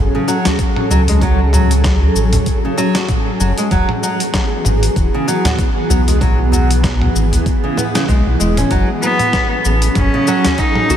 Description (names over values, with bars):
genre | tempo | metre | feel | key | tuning
organic downtempo | 96 BPM | 4/4 | swing 57% on 16ths | F# minor | A4 = 440 Hz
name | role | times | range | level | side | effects
granular cloud pad | sustained chords | 0.0-11.0 s | E3 to A4 | -19 LUFS | equal | built-in reverb, sidechain pumping
round analog bass | bass | 0.0-11.0 s | E1 to C#2 | -14 LUFS | equal | none
nylon-string guitar | arpeggios | 0.1-11.0 s | C#3 to F#4 | -20 LUFS | equal | wide subtle chorus, analog delay
dusty soul sampler-style drum kit | drums | 0.3-11.0 s | hi-hat, shaker, snare drum, toms | -21 LUFS | equal | none
udu | percussion | 0.5-11.0 s | none | -21 LUFS | equal | none
electronic kick drum | drums | 0.6-10.7 s | none | -18 LUFS | equal | none
clear cello | melody | 9.0-11.0 s | B3 to D#4 | -15 LUFS | equal | vintage 12-bit sampler grit, analog delay
room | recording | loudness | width
moderate cathedral reverb, RT60 5.2 s | dreamy mix soaked in reverb | -12 LUFS | side -10 dB against mid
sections
0.0-11.0 A section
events
none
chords
0.0 F#madd9; 3.7 E; 8.7 F#madd9